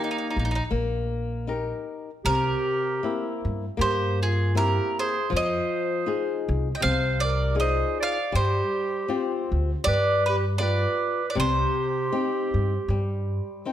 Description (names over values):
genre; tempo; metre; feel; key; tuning
italian folk, Italian serenade; 79 BPM; 4/4; swing 54% on 8ths; C minor; A4 = 440 Hz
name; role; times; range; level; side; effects
bowl-back mandolin; melody; 0.0-13.6 s; Eb4 to G5; -27 LUFS; right 2 dB; slapback echo
clear clarinet; second line; 0.0-13.6 s; Bb3 to Eb5; -29 LUFS; right 3 dB; none
flamenco guitar; accompaniment; 0.0-13.7 s; C3 to G5; -30 LUFS; left 6 dB; none
upright bass; bass; 0.4-13.4 s; Bb1 to G2; -26 LUFS; equal; none
room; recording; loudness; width
moderate recital hall reverb, RT60 1.5 s; none; -23 LUFS; side -11 dB against mid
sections
0.0-13.7 A section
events
none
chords
0.0 Eb; 2.3 C7; 5.3 Fm7; 8.3 G7sus4; 9.9 G7; 11.4 Cm